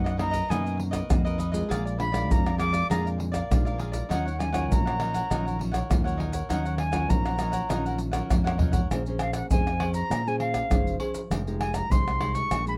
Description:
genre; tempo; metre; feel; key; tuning
samba and choro; 100 BPM; 4/4; straight; Eb minor, Bb minor from 8.9 s; A4 = 438 Hz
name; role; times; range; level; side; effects
silver concert flute; melody; 0.0-12.7 s; F5 to D6; -32 LUFS; equal; none
cavaquinho; accompaniment; 0.0-8.9 s; D#4 to Gb5; -36 LUFS; equal; none
nylon-string guitar; accompaniment; 0.0-12.8 s; Bb2 to C5; -35 LUFS; equal; none
fingered electric bass with an envelope filter; bass; 0.0-12.8 s; F1 to Bb2; -32 LUFS; equal; none
maracas, pandeiro, tamborim, surdo and agogo bells; percussion; 0.1-12.8 s; none; -30 LUFS; equal; none
room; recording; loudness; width
little or no reverb; none; -26 LUFS; mono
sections
0.0-8.9 A section; 8.9-12.8 B section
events
flute solo 0.0-8.9; drum fill 8.5-8.9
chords
0.0 Bmaj7; 1.7 Bb7; 4.1 Ebm9; 8.9 Bbm9; 11.3 Fm9

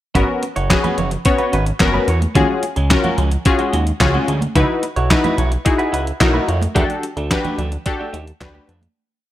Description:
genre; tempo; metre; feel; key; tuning
early-eighties boogie funk; 109 BPM; 4/4; straight; G# minor; A4 = 440 Hz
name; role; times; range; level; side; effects
funky polysynth comp; accompaniment; 0.1-8.7 s; B3 to C#5; -19 LUFS; left 3 dB; chorus
clean electric guitar; riff; 0.1-8.9 s; G#3 to C#5; -25 LUFS; right 4 dB; lush chorus
chorused synth bass; bass; 0.2-8.9 s; F#1 to E#2; -19 LUFS; equal; none
detuned 8-bit digital drum machine; drums; 0.2-9.0 s; handclaps, hi-hat, kick drum, snare drum; -18 LUFS; equal; gated reverb
congas; percussion; 0.2-8.9 s; none; -28 LUFS; right 4 dB; none
room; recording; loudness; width
light reverb; none; -15 LUFS; side -13 dB against mid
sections
0.2-9.0 verse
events
fade-out 6.8-9.0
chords
0.2 G#m11; 2.4 D#m11; 4.6 C#m11; 6.8 Em11 (rootless)

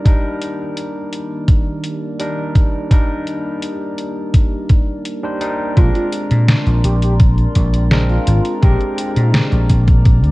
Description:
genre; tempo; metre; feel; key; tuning
vaporwave; 84 BPM; 4/4; straight; Eb major; A4 = 440 Hz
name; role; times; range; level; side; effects
barky tine electric piano; accompaniment; 0.0-10.3 s; G3 to C5; -23 LUFS; equal; wide subtle chorus, analog delay
warbly tape-like pad; sustained chords; 0.3-10.3 s; Eb3 to D6; -30 LUFS; equal; chorus, built-in reverb, phaser
detuned 8-bit digital drum machine; drums; 0.1-10.3 s; hi-hat, snare drum; -20 LUFS; equal; small room reverb
electronic kick drum; drums; 0.1-10.2 s; none; -12 LUFS; equal; small room reverb
warm velvety synth lead; melody; 5.8-9.3 s; F4 to G4; -25 LUFS; equal; chorus, tape echo
vintage slap bass; bass; 5.8-10.3 s; Ab1 to Bb2; -14 LUFS; equal; none
room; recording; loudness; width
digital ambience; cassette tape; -13 LUFS; side -20 dB against mid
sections
0.0-5.8 A section; 5.8-10.3 B section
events
none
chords
0.0 Ebmaj7; 5.8 Bb9

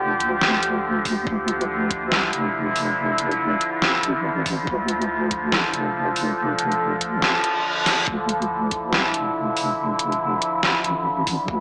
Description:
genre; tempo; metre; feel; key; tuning
deep dubstep; 141 BPM; 4/4; swing 61% on 16ths, half-time; D minor; A4 = 435 Hz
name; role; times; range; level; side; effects
overtone-sweeping drone; sustained chords; 0.0-11.6 s; D3 to A4; -25 LUFS; equal; chorus, built-in reverb
deep soft wobble bass; bass; 0.0-11.6 s; F1 to D2; -29 LUFS; equal; chorus
dubstep drum kit; drums; 0.2-11.4 s; hi-hat, snare drum; -24 LUFS; equal; none
electronic kick drum; drums; 1.1-5.4, 8.1-11.6 s; none; -34 LUFS; equal; none
reverse cymbal; sound effects; 7.4-8.1 s; none; -27 LUFS; equal; none
room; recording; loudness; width
moderate spring reverb, RT60 1.2 s, digital ambience; small speaker sound; -22 LUFS; mono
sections
0.0-11.6 A section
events
reverse cymbal 7.4-8.1; drum fill 7.9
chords
0.0 Dmadd9

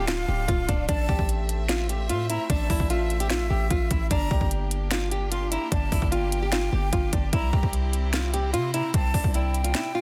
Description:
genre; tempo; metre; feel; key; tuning
hip hop, trap; 149 BPM; 4/4; half-time; unclear; A4 = 441 Hz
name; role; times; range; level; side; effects
nylon-string guitar; melody; 0.0-10.0 s; C4 to G4; -32 LUFS; equal; tape echo
breathy jazz flute; second line; 0.0-10.0 s; E5 to C6; -37 LUFS; equal; tape echo
bright chamber string section; sustained chords; 0.0-10.0 s; C3 to E5; -40 LUFS; equal; none
hard-hitting 808-style bass; bass; 0.0-9.7 s; D1 to C3; -29 LUFS; equal; none
trap drum kit; drums; 0.1-9.8 s; handclaps, hi-hat, kick drum, snare drum; -28 LUFS; equal; none
room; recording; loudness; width
small room ambience; dense, heavily limited modern master; -25 LUFS; mono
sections
0.0-10.0 A section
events
kick muted 9.7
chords
0.0 Dm; 0.9 Am; 4.1 Gm; 7.3 C

